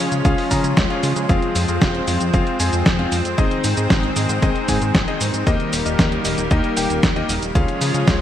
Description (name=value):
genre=italo disco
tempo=115 BPM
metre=4/4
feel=straight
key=F minor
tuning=A4 = 440 Hz
part: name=lush unison pad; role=sustained chords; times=0.0-8.2 s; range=Eb3 to Db4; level=-22 LUFS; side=equal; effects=chorus
part: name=warm electric grand piano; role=stabs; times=0.0-8.2 s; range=Bb3 to Bb5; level=-24 LUFS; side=left 4 dB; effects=digital delay
part: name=chorused synth bass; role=bass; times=0.0-8.2 s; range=Eb1 to Db3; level=-23 LUFS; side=equal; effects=none
part: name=clean 12-bit digital drum machine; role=drums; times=0.1-8.2 s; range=cabasa, hi-hat, snare drum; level=-22 LUFS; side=equal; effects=gated reverb
part: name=electronic kick drum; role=drums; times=0.2-8.2 s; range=none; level=-20 LUFS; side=equal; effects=overdrive
room=moderate plate reverb, RT60 2.5 s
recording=bright 1980s-style digital production, vinyl crackle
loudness=-16 LUFS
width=side -10 dB against mid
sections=0.0-8.2 A section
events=none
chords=0.0 Db; 1.3 Fm; 3.4 Ab; 5.5 Eb; 7.6 Db